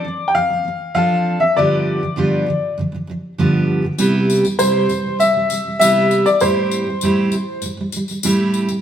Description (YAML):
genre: acoustic pop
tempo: 99 BPM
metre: 4/4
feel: straight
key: A minor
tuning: A4 = 441 Hz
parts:
  - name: bright upright piano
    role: melody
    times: 0.0-7.6 s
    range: C5 to G5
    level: -17 LUFS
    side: left 2 dB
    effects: none
  - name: picked steel-string acoustic guitar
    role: accompaniment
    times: 0.0-8.8 s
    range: G2 to A4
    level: -18 LUFS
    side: right 1 dB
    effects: none
  - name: tambourine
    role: percussion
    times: 4.0-8.8 s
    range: none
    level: -27 LUFS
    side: left 5 dB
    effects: none
room: moderate stone room reverb, RT60 1.4 s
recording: band playing live in one room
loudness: -15 LUFS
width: side -9 dB against mid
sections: 0.0-8.8 A section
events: none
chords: 0.0 F6; 1.6 G7; 4.0 Cmaj7; 6.4 Am7